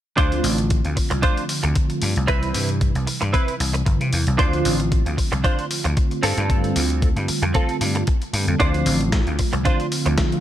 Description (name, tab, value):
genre	nu-disco, nu disco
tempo	114 BPM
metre	4/4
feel	swing 54% on 16ths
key	D dorian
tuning	A4 = 439 Hz
part	mellow synth brass	accompaniment	0.2-10.4 s	C3 to B4	-25 LUFS	right 1 dB	chorus
part	direct-recorded clean electric guitar	riff	0.2-10.2 s	C4 to C5	-25 LUFS	right 2 dB	ensemble chorus, ping-pong delay
part	vintage slap bass	bass	0.2-10.2 s	G1 to C3	-22 LUFS	equal	sidechain pumping
part	dusty soul sampler-style drum kit	drums	0.2-10.4 s	hi-hat, snare drum	-28 LUFS	left 1 dB	none
part	electronic kick drum	drums	0.2-10.3 s	none	-20 LUFS	equal	none
room	light reverb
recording	bright 1980s-style digital production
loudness	-18 LUFS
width	side -12 dB against mid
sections	0.2-10.4 A section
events	filter sweep on analog polysynth 0.2-10.4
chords	0.2 Dm7; 2.3 Cmaj7; 4.4 Dm7; 6.2 G9sus4; 8.6 Dm7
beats	| 0.18 0.71 1.23 1.76 | 2.29 2.81 3.34 3.86 | 4.39 4.92 5.44 5.97 | 6.50 7.02 7.55 8.07 | 8.60 9.13 9.65 10.18